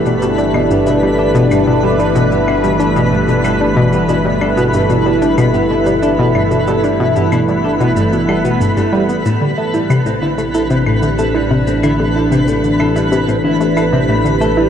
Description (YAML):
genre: ambient, sequencer-driven space music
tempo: 93 BPM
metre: 4/4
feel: straight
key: unclear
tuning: A4 = 440 Hz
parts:
  - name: phased analog pad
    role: sustained chords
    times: 0.0-14.7 s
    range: E3 to B4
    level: -15 LUFS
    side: equal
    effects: phaser, chorus
  - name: electric guitar through a small old amp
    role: arpeggios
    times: 0.0-14.7 s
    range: G3 to A4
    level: -23 LUFS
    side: right 1 dB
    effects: auto-pan, ping-pong delay
  - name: analog drone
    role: bass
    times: 0.0-14.7 s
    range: G1 to A1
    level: -23 LUFS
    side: equal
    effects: chorus
  - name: twinkling granular texture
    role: texture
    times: 0.0-14.7 s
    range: B3 to B5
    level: -23 LUFS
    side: equal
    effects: built-in reverb
  - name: analog pluck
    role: riff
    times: 0.1-14.7 s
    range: G2 to E4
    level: -16 LUFS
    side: left 1 dB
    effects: chorus, ping-pong delay
  - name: cabasa and claves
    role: percussion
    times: 0.1-14.5 s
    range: none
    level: -32 LUFS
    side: left 3 dB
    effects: ping-pong delay
room: wet huge ambient reverb, RT60 7.5 s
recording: worn, warbling old tape, cassette tape, warbly pitch drift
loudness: -11 LUFS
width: side -8 dB against mid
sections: 0.0-14.7 A section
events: fade-in on clean electric guitar 0.0-14.7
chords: 0.0 G; 9.3 Amadd9